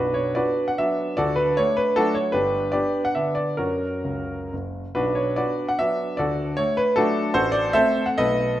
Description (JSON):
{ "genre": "classical, romantic triple-time dance for piano with dotted rhythms", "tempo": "123-168 BPM", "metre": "3/4", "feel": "rubato", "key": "B minor", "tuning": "A4 = 440 Hz", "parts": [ { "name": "clear grand piano", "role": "solo", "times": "0.0-8.6 s", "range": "F#1 to F#5", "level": "-20 LUFS", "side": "equal", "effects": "none" } ], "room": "wet recital hall reverb, RT60 1.5 s", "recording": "none", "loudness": "-20 LUFS", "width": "side -13 dB against mid", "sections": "0.0-8.6 A section", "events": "none", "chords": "0.0 Bm; 1.2 D; 2.3 G; 3.6 F#; 5.0 Bm; 6.2 D; 7.3 F#dim/A" }